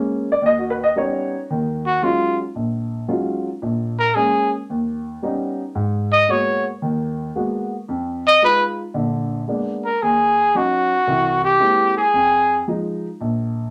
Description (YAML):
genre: jazz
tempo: 113 BPM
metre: 4/4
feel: swing 68% on 8ths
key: Eb minor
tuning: A4 = 438 Hz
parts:
  - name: dark grand piano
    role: accompaniment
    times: 0.0-13.7 s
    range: Bb1 to D#5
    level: -24 LUFS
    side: equal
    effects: none
  - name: breathy trumpet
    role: melody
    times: 1.9-12.6 s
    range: F4 to Eb5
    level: -18 LUFS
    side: equal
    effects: none
room: moderate studio ambience, RT60 0.5 s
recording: none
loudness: -20 LUFS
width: mono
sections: 0.0-1.5 A section; 1.5-13.7 B section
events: none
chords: 0.4 D#aug7; 1.5 Ebm11; 3.6 Bbm7; 4.7 Eb7b13; 5.8 Abm9; 7.9 Fm7; 8.9 Bb7b9; 10.0 Ebm7; 11.1 C7b13; 12.1 Fm7; 13.2 N.C.